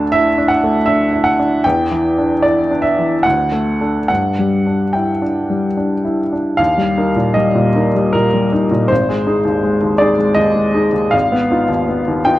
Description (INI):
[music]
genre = classical, romantic character piece for solo piano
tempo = 68-82 BPM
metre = 3/4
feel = rubato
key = Eb major from 6.6 s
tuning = A4 = 441 Hz
[part]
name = clear upright piano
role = solo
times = 0.0-12.4 s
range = Ab1 to A5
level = -13 LUFS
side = equal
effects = none
[sound]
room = moderate recital hall reverb, RT60 1.3 s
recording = dark, warm production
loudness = -13 LUFS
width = side -15 dB against mid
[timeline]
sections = 0.0-6.6 A section; 6.6-12.4 B section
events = none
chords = 0.0 D5; 1.6 Em7; 3.2 D; 4.1 G5; 6.6 Eb; 8.9 Ab; 11.1 Fm7b5/Ab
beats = 0.12 0.87 | 1.64 2.43 3.24 | 4.09 4.95 5.77 | 6.59 7.36 8.14 | 8.90 9.64 10.38 | 11.14 11.89